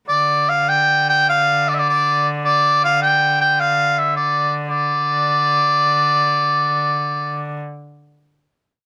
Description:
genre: medieval dance.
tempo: 101-118 BPM (dotted quarters).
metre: 6/8.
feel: straight.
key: D minor.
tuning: A4 = 439 Hz.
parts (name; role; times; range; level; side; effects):
bright shawm; melody; 0.1-7.6 s; D5 to G5; -18 LUFS; equal; slapback echo.
clear hurdy-gurdy; drone; 0.1-7.6 s; D3; -27 LUFS; equal; none.
room: little or no reverb.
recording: recorded outdoors, with no room sound.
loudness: -17 LUFS.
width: mono.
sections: 0.1-4.7 A section; 4.7-6.8 final note.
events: speeding up 0.1-6.8.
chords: none.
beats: | 0.09 0.68 | 1.27 1.86 | 2.44 3.01 | 3.58 4.14 | 4.69 5.23 | 5.76 6.29.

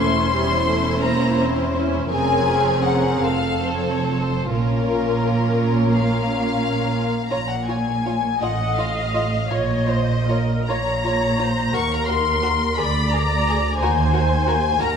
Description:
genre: classical, slow romantic movement for string orchestra.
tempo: 40-60 BPM (dotted quarters).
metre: 6/8.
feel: rubato.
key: Bb minor.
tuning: A4 = 440 Hz.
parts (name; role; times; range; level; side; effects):
warm studio violin section; melody; 0.0-15.0 s; Bb4 to Db6; -24 LUFS; left 5 dB; none.
rich studio violin section; second line; 0.0-14.9 s; E4 to Eb5; -26 LUFS; left 2 dB; none.
warm studio viola section; accompaniment; 0.0-15.0 s; G3 to Eb5; -24 LUFS; right 1 dB; none.
warm studio cello section; bass; 0.0-15.0 s; D2 to Bb2; -25 LUFS; right 2 dB; none.
warm studio double bass section; bass; 0.0-15.0 s; E1 to Eb2; -25 LUFS; right 3 dB; none.
room: moderate scoring stage reverb, RT60 1.6 s.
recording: none.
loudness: -18 LUFS.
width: side -7 dB against mid.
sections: 0.0-7.3 A section; 7.3-15.0 A section.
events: none.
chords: 0.0 Edim7; 2.1 Bbm/F; 3.2 F; 4.5 Bbm; 8.4 F7/A; 9.5 Bbm; 11.8 Eb5; 12.8 Bb/D; 13.8 Ebm.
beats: 1.04 | 2.12 3.24 | 4.51 5.97 | 7.29 8.41 | 9.49 10.68 | 11.76 12.78 | 13.79 14.81.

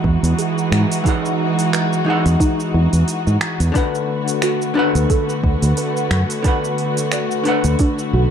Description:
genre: sunset chillout.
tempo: 89 BPM.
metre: 4/4.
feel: swing 56% on 16ths.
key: unclear.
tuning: A4 = 440 Hz.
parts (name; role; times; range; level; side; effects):
vintage hollow-body jazz guitar; accompaniment; 0.0-8.3 s; D3 to F#5; -21 LUFS; moving between left 6 dB and right 9 dB; auto-pan, digital delay.
dark studio string section; sustained chords; 0.0-8.3 s; D3 to F#4; -22 LUFS; left 3 dB; none.
fingered electric bass; bass; 0.0-8.3 s; B1 to G#2; -16 LUFS; equal; none.
electronic kick drum; drums; 0.0-7.9 s; none; -18 LUFS; equal; overdrive, small room reverb.
smooth R&B drum kit; drums; 0.2-8.1 s; finger snaps, hi-hat, shaker; -26 LUFS; right 3 dB; overdrive, small room reverb.
soft round pluck; arpeggios; 0.4-8.3 s; D4 to D5; -26 LUFS; right 4 dB; analog chorus, digital delay.
room: moderate plate reverb, RT60 2.3 s.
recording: dark, warm production.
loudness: -15 LUFS.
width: side -8 dB against mid.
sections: 0.0-8.3 A section.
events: filter sweep on synth pluck 0.0-8.3.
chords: 0.0 Emaj9; 3.8 D6.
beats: 0.38 | 1.05 1.73 2.40 3.08 | 3.75 4.42 5.10 5.77 | 6.45 7.12 7.80.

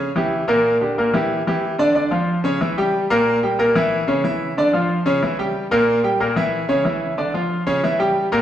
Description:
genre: latin.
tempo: 184 BPM.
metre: 4/4.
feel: straight.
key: D harmonic minor.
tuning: A4 = 439 Hz.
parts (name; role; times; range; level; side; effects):
bright concert grand piano; solo; 0.0-8.4 s; A#2 to G5; -17 LUFS; equal; none.
room: wet recital hall reverb, RT60 1.4 s.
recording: recorded in a church or concert hall.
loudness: -17 LUFS.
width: side -11 dB against mid.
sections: 0.0-1.9 A section; 1.9-8.4 B section.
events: none.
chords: 0.0 A#dim7; 0.6 Gm; 1.3 Dsus24; 1.9 Dm; 2.6 Edim; 3.9 C#m; 4.6 Dm; 5.2 Edim; 6.5 C#m; 7.2 Dm; 7.8 Edim.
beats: 0.31 | 0.64 0.97 1.29 1.62 | 1.95 2.28 2.60 2.93 | 3.26 3.58 3.91 4.24 | 4.56 4.89 5.22 5.54 | 5.87 6.20 6.52 6.85 | 7.18 7.50 7.83 8.16.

